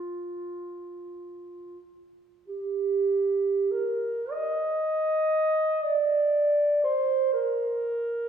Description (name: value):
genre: classical, free, expressive piece for unaccompanied clarinet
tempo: 27-42 BPM (dotted quarters)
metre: 6/8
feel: rubato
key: unclear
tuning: A4 = 440 Hz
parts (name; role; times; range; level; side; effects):
- dark clarinet; solo; 0.0-8.3 s; F4 to Eb5; -24 LUFS; right 2 dB; none
room: wet concert hall reverb, RT60 1.9 s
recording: heard from further back in the room, studio reverb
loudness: -23 LUFS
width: side -8 dB against mid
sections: 0.0-8.3 A section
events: none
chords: none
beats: 0.51 | 2.48 4.32 | 5.85 7.33